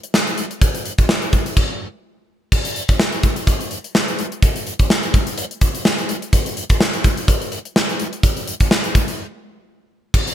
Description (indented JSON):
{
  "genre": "pop",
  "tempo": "126 BPM",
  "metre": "4/4",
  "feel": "swing 55% on 16ths",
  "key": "none",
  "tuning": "none",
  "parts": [
    { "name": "gated 80s drum kit", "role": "drums", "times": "0.0-10.3 s", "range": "crash cymbal, hi-hat, kick drum, snare drum", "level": "-16 LUFS", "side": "equal", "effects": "gated reverb" }
  ],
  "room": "little or no reverb",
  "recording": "bright 1980s-style digital production",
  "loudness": "-16 LUFS",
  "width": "side -11 dB against mid",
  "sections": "0.0-2.5 A section; 2.5-10.1 B section",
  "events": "stop 1.6-2.5; break 9.2-10.1",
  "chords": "none"
}